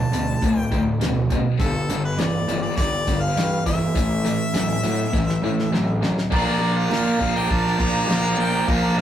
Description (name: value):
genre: classic rock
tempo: 102 BPM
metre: 4/4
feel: straight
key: unclear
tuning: A4 = 440 Hz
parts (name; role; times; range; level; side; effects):
- bright harmonica; melody; 0.0-9.0 s; A4 to Bb5; -27 LUFS; left 1 dB; none
- distorted electric guitar; riff; 0.0-9.0 s; D2 to Bb4; -25 LUFS; right 3 dB; distortion
- tight distorted guitar; riff; 0.0-9.0 s; D2 to Bb3; -24 LUFS; left 2 dB; distortion
- fuzz picked electric bass; bass; 0.0-9.0 s; D1 to Bb2; -25 LUFS; equal; overdrive
- damped 70s drum kit; drums; 0.1-8.8 s; crash cymbal, hi-hat, kick drum, snare drum; -26 LUFS; equal; none
room: moderate stone room reverb, RT60 1.4 s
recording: rough rehearsal-room recording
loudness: -19 LUFS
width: side -10 dB against mid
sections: 0.0-6.3 A section; 6.3-9.0 B section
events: drum fill 5.1-6.3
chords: 0.0 D5; 1.6 G5; 4.0 A5; 6.3 Bb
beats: 0.42 1.01 | 1.60 2.19 2.78 3.37 | 3.96 4.55 5.14 5.73 | 6.32 6.91 7.50 8.09 | 8.68